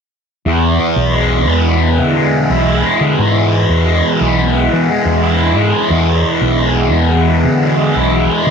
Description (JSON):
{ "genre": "rock", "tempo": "88 BPM", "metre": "4/4", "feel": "straight", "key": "E major", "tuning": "A4 = 440 Hz", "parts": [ { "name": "fuzz guitar", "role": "riff", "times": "0.5-8.5 s", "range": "E2 to E4", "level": "-12 LUFS", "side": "equal", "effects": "distortion, phaser" }, { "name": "picked electric bass with an envelope filter", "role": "bass", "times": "0.5-8.5 s", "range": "B1 to E3", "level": "-15 LUFS", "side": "equal", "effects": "none" } ], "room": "moderate echo chamber reverb, RT60 1.4 s", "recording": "none", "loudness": "-11 LUFS", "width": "side -6 dB against mid", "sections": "0.5-8.5 A section", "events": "none", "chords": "0.5 E", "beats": "| 0.45 1.13 1.81 2.50 | 3.18 3.86 4.54 5.23 | 5.91 6.59 7.27 7.96" }